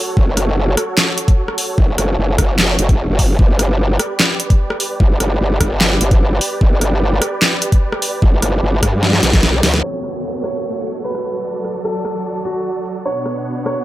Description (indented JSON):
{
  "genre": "heavy wobble dubstep",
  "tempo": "149 BPM",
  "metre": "4/4",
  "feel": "half-time",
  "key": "F# phrygian",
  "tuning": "A4 = 441 Hz",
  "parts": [
    { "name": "supersaw chords", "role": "sustained chords", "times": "0.0-13.8 s", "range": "B2 to A5", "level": "-24 LUFS", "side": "right 2 dB", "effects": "sidechain pumping, low-pass filter" },
    { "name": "growl bass", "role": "bass", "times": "0.2-9.8 s", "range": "F#1 to G2", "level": "-16 LUFS", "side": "equal", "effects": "chorus, overdrive" },
    { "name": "electronic kick drum", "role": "drums", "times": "0.2-9.4 s", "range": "none", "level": "-13 LUFS", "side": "equal", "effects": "none" },
    { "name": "dubstep drum kit", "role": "drums", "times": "0.4-13.7 s", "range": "crash cymbal, handclaps, hi-hat, rim click, snare drum", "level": "-17 LUFS", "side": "equal", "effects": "overdrive" },
    { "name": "bright concert grand piano", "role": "melody", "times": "9.8-13.8 s", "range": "F#4 to C#5", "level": "-23 LUFS", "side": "right 1 dB", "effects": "tape echo" },
    { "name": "downlifter", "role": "sound effects", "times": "9.9-13.1 s", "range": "none", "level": "-28 LUFS", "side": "equal", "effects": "none" }
  ],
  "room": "little or no reverb",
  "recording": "low-pass filter",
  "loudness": "-14 LUFS",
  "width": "side -15 dB against mid",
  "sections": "0.0-9.8 A section; 9.8-13.8 B section",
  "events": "drop 0.0-9.8; drum fill 9.0-9.8; band accent 9.7; filter sweep 9.8-13.8",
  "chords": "0.0 F#m; 3.4 G; 9.8 F#m; 11.4 D/F#; 13.1 Bmadd9"
}